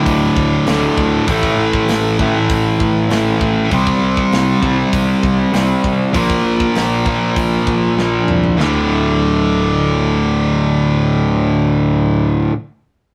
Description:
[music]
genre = heavy metal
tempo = 99 BPM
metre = 4/4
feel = straight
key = D minor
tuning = A4 = 440 Hz
[part]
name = sludgy distorted guitar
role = riff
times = 0.0-12.5 s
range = D2 to C4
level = -18 LUFS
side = equal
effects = overdrive
[part]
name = tight distorted guitar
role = riff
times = 0.0-12.5 s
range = D2 to C4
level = -21 LUFS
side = equal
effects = distortion
[part]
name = fuzz fingered electric bass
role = bass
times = 0.1-12.5 s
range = D1 to C3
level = -24 LUFS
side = equal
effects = overdrive
[part]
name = tight metal drum kit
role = drums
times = 0.1-8.7 s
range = hi-hat, kick drum, snare drum, toms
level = -25 LUFS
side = equal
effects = none
[sound]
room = light reverb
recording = rough rehearsal-room recording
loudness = -15 LUFS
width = mono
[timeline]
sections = 0.0-8.6 A section; 8.6-11.0 B section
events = drum fill 8.0-8.6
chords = 0.0 D5; 1.3 A5; 3.7 C5; 6.1 Bb5; 8.6 D5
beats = 0.06 0.67 | 1.28 1.88 2.49 3.10 | 3.71 4.32 4.93 5.54 | 6.14 6.75 7.36 7.97 | 8.58 9.19 9.80 10.41

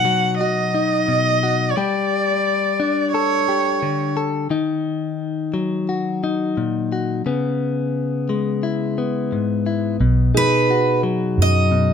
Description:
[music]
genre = folk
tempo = 88 BPM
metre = 4/4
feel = straight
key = B major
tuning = A4 = 442 Hz
[part]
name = rich cello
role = second line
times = 0.0-4.1 s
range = C#5 to F#5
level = -19 LUFS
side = right 2 dB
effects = none
[part]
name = direct-recorded clean electric guitar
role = accompaniment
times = 0.0-11.9 s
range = G#2 to A4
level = -20 LUFS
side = left 4 dB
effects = none
[part]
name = vintage muted fingered electric bass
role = bass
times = 10.0-11.9 s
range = B1 to F#2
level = -16 LUFS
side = right 1 dB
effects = none
[part]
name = felt-muted upright piano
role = arpeggios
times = 10.3-11.9 s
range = G#4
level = -25 LUFS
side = right 8 dB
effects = none
[part]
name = picked steel-string acoustic guitar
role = melody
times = 10.4-11.9 s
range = B4 to D#5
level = -18 LUFS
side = right 2 dB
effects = none
[sound]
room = light reverb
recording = none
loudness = -18 LUFS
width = side -7 dB against mid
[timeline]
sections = 0.0-10.0 A section; 10.0-11.9 B section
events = cello solo 0.0-10.0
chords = 0.0 B; 1.8 Gsus2; 4.5 D#m; 7.3 C#m7; 10.0 B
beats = 0.40 1.08 | 1.77 2.45 3.14 3.82 | 4.51 5.20 5.88 6.57 | 7.25 7.94 8.62 9.31 | 10.00 10.69 11.37

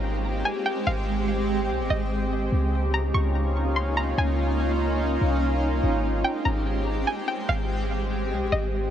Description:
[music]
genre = hip hop, atmospheric cloud-rap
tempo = 145 BPM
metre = 4/4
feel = half-time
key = Ab major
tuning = A4 = 437 Hz
[part]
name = string-like resonator pluck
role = melody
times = 0.0-8.7 s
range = Eb5 to Db6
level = -30 LUFS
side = equal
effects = chorus, low-pass filter, digital delay
[part]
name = shimmering ambient pad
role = sustained chords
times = 0.0-8.9 s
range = Ab3 to G4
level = -26 LUFS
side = equal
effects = chorus, built-in reverb
[part]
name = clean 808-style bass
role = bass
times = 0.0-8.9 s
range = Ab1 to Db2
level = -26 LUFS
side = equal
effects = none
[sound]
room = light reverb, digital ambience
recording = none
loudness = -23 LUFS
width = side -10 dB against mid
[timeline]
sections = 0.0-8.9 A section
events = none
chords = 0.0 Abmaj7; 2.5 Db69; 5.8 Abmaj7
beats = 0.04 0.45 | 0.87 1.28 1.70 2.11 | 2.52 2.94 3.35 3.76 | 4.18 4.59 5.00 5.42 | 5.83 6.25 6.66 7.07 | 7.49 7.90 8.31 8.73

